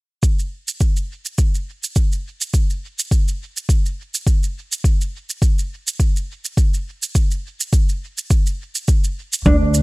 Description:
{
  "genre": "organic downtempo",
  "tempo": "104 BPM",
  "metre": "4/4",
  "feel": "swing 56% on 16ths",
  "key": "unclear",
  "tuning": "A4 = 440 Hz",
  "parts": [
    { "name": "electronic kick drum", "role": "drums", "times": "0.2-9.6 s", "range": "none", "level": "-16 LUFS", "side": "equal", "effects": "none" },
    { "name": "shaker", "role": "drums", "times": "0.2-9.8 s", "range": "none", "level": "-26 LUFS", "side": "right 4 dB", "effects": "none" },
    { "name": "nylon-string guitar", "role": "arpeggios", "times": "9.5-9.6 s", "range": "D4", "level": "-18 LUFS", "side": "right 2 dB", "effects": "low-pass filter" },
    { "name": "upright bass", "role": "bass", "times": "9.5-9.8 s", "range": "D2", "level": "-14 LUFS", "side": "equal", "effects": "sidechain pumping" }
  ],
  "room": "studio ambience",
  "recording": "echo-heavy mix",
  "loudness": "-17 LUFS",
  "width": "side -24 dB against mid",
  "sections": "0.2-9.5 A section",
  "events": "none",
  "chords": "none"
}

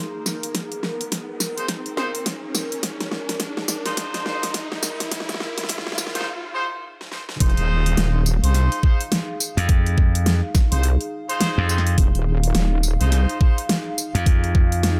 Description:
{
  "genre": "glitch hop",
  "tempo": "105 BPM",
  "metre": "4/4",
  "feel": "swing 61% on 16ths",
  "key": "F minor pentatonic",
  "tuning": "A4 = 440 Hz",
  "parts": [
    { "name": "dark analog pad", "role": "sustained chords", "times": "0.0-15.0 s", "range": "Eb4 to F5", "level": "-34 LUFS", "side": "equal", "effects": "chorus, phaser, sidechain pumping" },
    { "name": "riser", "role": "sound effects", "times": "0.1-6.3 s", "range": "none", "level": "-36 LUFS", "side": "equal", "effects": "none" },
    { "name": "dubstep drum kit", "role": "drums", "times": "0.3-15.0 s", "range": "hi-hat, snare drum, tambourine", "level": "-28 LUFS", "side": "equal", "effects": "overdrive" },
    { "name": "electronic kick drum", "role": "drums", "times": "0.5-14.7 s", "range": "none", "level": "-19 LUFS", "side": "equal", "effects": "overdrive, high-pass filter on kick, high-pass filter on room" },
    { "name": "clear horn section", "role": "stabs", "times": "1.6-13.6 s", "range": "Eb4 to C5", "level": "-31 LUFS", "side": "equal", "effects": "sidechain pumping, low-pass filter, delay" },
    { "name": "wobble bass", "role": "bass", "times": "7.4-13.3 s", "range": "Eb1 to C2", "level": "-20 LUFS", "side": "equal", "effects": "chorus, tube saturation" },
    { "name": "glassy slap bass", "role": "bass", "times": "9.6-15.0 s", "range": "F2", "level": "-22 LUFS", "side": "equal", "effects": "none" }
  ],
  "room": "digital ambience",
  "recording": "high-pass filter",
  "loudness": "-22 LUFS",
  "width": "mono",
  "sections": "0.0-7.4 A section; 7.4-15.0 B section",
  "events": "build-up 0.0-7.4; drum fill 0.0-6.3, 7.0-7.4; riser 0.1-6.3; break 6.3-7.4; drop 7.4-15.0",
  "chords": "0.0 Fm7"
}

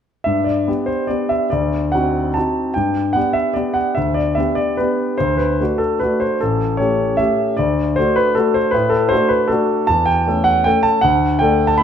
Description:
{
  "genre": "classical, piano waltz",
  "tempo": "136-168 BPM",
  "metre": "3/4",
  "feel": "rubato",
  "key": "G major",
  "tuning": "A4 = 444 Hz",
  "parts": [
    { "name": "warm concert grand piano", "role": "solo", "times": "0.2-11.8 s", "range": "A1 to B5", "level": "-15 LUFS", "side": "equal", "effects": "none" }
  ],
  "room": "moderate recital hall reverb, RT60 1.3 s",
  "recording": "minimal, uncompressed stereo recording",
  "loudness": "-15 LUFS",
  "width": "side -8 dB against mid",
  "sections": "0.3-11.8 A section",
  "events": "none",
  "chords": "0.3 G; 1.5 D7b9; 2.8 G; 5.2 D; 6.4 A7; 7.6 D; 9.9 A7/E; 11.0 D"
}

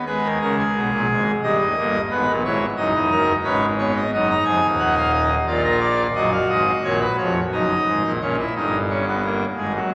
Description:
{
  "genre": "classical, baroque-style 3-part fugue for pipe organ",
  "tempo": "88 BPM",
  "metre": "3/4",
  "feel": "straight",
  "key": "unclear",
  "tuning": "A4 = 442 Hz",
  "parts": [
    { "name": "pipe organ, full organ", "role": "solo", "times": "0.0-9.9 s", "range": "D#1 to A#5", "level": "-20 LUFS", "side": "equal", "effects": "none" }
  ],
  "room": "wet church reverb, RT60 2.6 s",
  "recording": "vinyl crackle",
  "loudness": "-20 LUFS",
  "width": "mono",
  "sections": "0.1-8.2 A section; 8.2-9.9 B section",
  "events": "none",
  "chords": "0.1 G#m; 1.4 D#; 2.1 G#m; 4.1 D#m; 5.5 A#; 6.2 D#m/F#; 8.2 D#7"
}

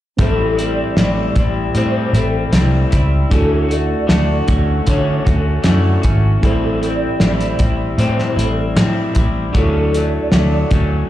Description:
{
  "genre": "indie pop, bedroom pop",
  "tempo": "77 BPM",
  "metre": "4/4",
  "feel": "straight",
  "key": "unclear",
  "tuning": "A4 = 440 Hz",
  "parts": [
    { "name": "vibraphone with soft mallets", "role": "second line", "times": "0.2-10.7 s", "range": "A4 to D5", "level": "-24 LUFS", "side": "right 1 dB", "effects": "ensemble chorus, tape echo, slapback echo" },
    { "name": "electric guitar through a small old amp", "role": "accompaniment", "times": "0.2-11.1 s", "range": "A2 to F#4", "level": "-21 LUFS", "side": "left 3 dB", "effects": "lush chorus, warbly pitch drift, slapback echo" },
    { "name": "mellow reed electric piano", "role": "accompaniment", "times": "0.2-11.1 s", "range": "C4 to C5", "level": "-26 LUFS", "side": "right 2 dB", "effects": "slapback echo" },
    { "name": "vintage muted picked electric bass", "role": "bass", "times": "0.2-11.0 s", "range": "G#1 to D3", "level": "-16 LUFS", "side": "equal", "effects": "none" },
    { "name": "cloth-damped thuddy drum kit", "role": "drums", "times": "0.2-10.9 s", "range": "hi-hat, kick drum, snare drum", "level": "-17 LUFS", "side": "equal", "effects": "none" }
  ],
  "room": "light reverb, small room ambience",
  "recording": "live gig heard through the venue's PA, club reverb",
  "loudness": "-13 LUFS",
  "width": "side -13 dB against mid",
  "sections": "0.2-11.1 A section",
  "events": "none",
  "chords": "0.2 Am7; 3.3 Dmaj7; 6.4 Am7; 9.5 Dmaj7"
}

